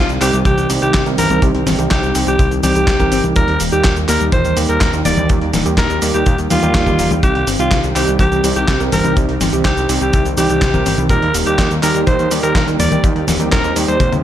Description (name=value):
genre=italo disco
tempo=124 BPM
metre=4/4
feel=straight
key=C minor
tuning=A4 = 440 Hz
part: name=raspy alto saxophone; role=melody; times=0.0-14.1 s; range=F4 to D5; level=-18 LUFS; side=equal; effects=tape echo
part: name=lush unison pad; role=sustained chords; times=0.0-14.2 s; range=Eb3 to G4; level=-22 LUFS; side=equal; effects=chorus
part: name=analog pluck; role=arpeggios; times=0.0-14.1 s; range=Bb2 to G4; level=-25 LUFS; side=left 3 dB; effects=none
part: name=fat analog bass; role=bass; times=0.0-14.2 s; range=Eb1 to Eb2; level=-20 LUFS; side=equal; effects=none
part: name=dusty soul sampler-style drum kit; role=drums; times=0.1-14.2 s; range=cabasa, congas, handclaps, hi-hat, snare drum, toms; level=-19 LUFS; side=equal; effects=gated reverb
part: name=tine electric piano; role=stabs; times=0.2-14.0 s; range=G3 to Bb4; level=-22 LUFS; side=right 5 dB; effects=overdrive, vintage 12-bit sampler grit
part: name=kick drum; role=drums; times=0.5-14.1 s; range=none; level=-17 LUFS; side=equal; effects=none
room=light reverb, digital ambience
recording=none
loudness=-12 LUFS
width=side -11 dB against mid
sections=0.0-14.2 A section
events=drum fill 14.0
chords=0.0 Cm; 3.4 Eb; 7.2 Cm; 11.1 Eb